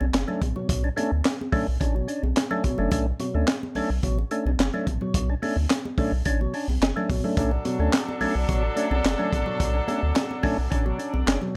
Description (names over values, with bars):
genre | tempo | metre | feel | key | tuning
funk | 108 BPM | 4/4 | straight | B minor | A4 = 444 Hz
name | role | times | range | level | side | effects
percussive tonewheel organ | stabs | 0.0-11.5 s | B2 to D4 | -30 LUFS | equal | overdrive, slow rotary speaker
round analog bass | bass | 0.0-11.4 s | F#1 to D2 | -28 LUFS | equal | none
congas | percussion | 0.0-11.5 s | none | -36 LUFS | equal | none
crunchy breakbeat drum kit | drums | 0.1-11.4 s | handclaps, hi-hat, kick drum, snare drum | -29 LUFS | equal | none
warm horn section | second line | 7.4-11.5 s | F#3 to A4 | -32 LUFS | equal | none
room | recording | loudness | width
light reverb, small room ambience | none | -25 LUFS | mono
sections
0.0-11.6 A section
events
none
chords
0.0 Bm9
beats
0.13 | 0.69 1.25 1.81 2.36 | 2.92 3.48 4.03 4.59 | 5.15 5.70 6.26 6.82 | 7.37 7.93 8.48 9.04 | 9.60 10.15 10.71 11.27